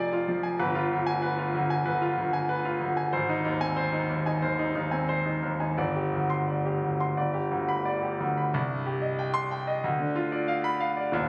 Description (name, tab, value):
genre	classical, virtuoso piano study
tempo	86-96 BPM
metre	4/4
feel	rubato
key	unclear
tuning	A4 = 440 Hz
part	clear concert grand piano	solo	0.0-11.3 s	Eb1 to C6	-28 LUFS	equal	none
room	light reverb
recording	recorded on a phone in the room, club reverb, compression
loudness	-28 LUFS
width	mono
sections	0.0-8.5 A section; 8.5-11.3 B section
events	none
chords	0.0 Ddim/F; 0.6 G7b9; 3.1 Ab; 5.8 Gsus4; 7.2 G; 8.5 Cm; 9.8 Bdim/D